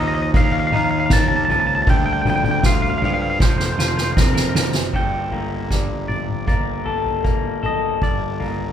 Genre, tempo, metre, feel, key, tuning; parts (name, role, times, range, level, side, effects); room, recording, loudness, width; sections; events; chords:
post-rock; 78 BPM; 4/4; straight; G minor; A4 = 439 Hz
twangy electric guitar; melody; 0.0-8.7 s; Bb4 to A5; -23 LUFS; equal
pedal steel guitar; sustained chords; 0.0-8.7 s; C3 to Bb4; -32 LUFS; right 1 dB
electric guitar through a small old amp; arpeggios; 0.0-8.7 s; G2 to A4; -24 LUFS; left 3 dB
fuzz picked electric bass; bass; 0.0-8.7 s; F1 to G2; -26 LUFS; right 1 dB; overdrive
soft-mallet drum kit; drums; 0.3-8.6 s; crash cymbal, kick drum, snare drum, toms; -20 LUFS; equal
moderate large studio reverb, RT60 0.8 s; band playing live in one room; -17 LUFS; side -9 dB against mid
0.0-4.9 A section; 4.9-8.7 B section
drum fill 3.4-4.9
0.0 Ebsus2; 1.9 Bb6/D; 3.4 Fsus4; 4.9 Gmadd9